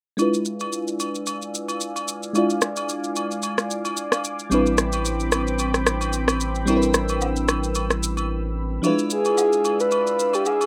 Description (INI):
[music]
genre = amapiano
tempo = 111 BPM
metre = 4/4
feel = swing 55% on 16ths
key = unclear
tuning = A4 = 440 Hz
[part]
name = crystalline FM electric piano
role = accompaniment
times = 0.2-10.7 s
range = F3 to D5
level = -27 LUFS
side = equal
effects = chorus, low-pass filter
[part]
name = lush unison pad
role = sustained chords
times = 0.2-10.7 s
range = C4 to E6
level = -33 LUFS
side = equal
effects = chorus, low-pass filter
[part]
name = electronic shaker and rim click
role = drums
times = 0.2-10.7 s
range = none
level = -27 LUFS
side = equal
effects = none
[part]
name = agogo bells and woodblock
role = percussion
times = 0.2-10.7 s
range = none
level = -34 LUFS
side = equal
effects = none
[part]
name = round analog bass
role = bass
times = 4.5-8.8 s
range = A1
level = -29 LUFS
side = equal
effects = none
[part]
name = breathy flute-like synth lead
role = melody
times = 9.1-10.7 s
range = G4 to B4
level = -22 LUFS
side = equal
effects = chorus, tremolo
[sound]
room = light reverb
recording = rough home demo mix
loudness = -23 LUFS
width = mono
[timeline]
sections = 0.2-8.8 A section; 8.8-10.7 B section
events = filter sweep 0.2-8.8; break 8.3-8.8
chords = 0.2 E7b9; 4.5 Am11; 8.8 E7b9